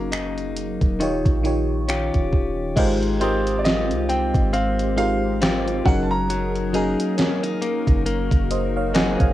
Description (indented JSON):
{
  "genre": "contemporary R&B",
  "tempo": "68 BPM",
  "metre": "4/4",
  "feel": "swing 58% on 16ths",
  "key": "Ab major",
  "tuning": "A4 = 441 Hz",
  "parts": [
    { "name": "FM electric piano", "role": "accompaniment", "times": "0.0-9.3 s", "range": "Eb3 to Ab5", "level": "-25 LUFS", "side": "right 1 dB", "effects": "chorus, phaser, cassette tape" },
    { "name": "direct-recorded clean electric guitar", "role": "arpeggios", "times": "0.0-9.3 s", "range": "Eb3 to Ab4", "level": "-26 LUFS", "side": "left 5 dB", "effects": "cassette tape" },
    { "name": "warm 808-style bass", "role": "bass", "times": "0.0-9.3 s", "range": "Eb1 to C2", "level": "-26 LUFS", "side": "equal", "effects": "none" },
    { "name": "gated 80s digital drum machine", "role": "drums", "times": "0.1-9.3 s", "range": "crash cymbal, finger snaps, hi-hat, kick drum, snare drum", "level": "-21 LUFS", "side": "equal", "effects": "gated reverb, gated reverb snare, cassette tape" },
    { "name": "hollow soft pad", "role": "sustained chords", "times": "3.1-9.3 s", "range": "Gb3 to Bb4", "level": "-32 LUFS", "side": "equal", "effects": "ensemble chorus, cassette tape" },
    { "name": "warm baby grand piano", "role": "melody", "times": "3.2-7.0 s", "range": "C5 to Bb5", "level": "-26 LUFS", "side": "right 1 dB", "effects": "cassette tape" }
  ],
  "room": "little or no reverb",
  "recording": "home recording on cassette",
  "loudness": "-19 LUFS",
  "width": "side -14 dB against mid",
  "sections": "0.0-2.8 A section; 2.8-9.3 B section",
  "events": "none",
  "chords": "0.0 Gb69; 1.0 Eb9; 2.8 Abmaj13; 5.9 Gb69"
}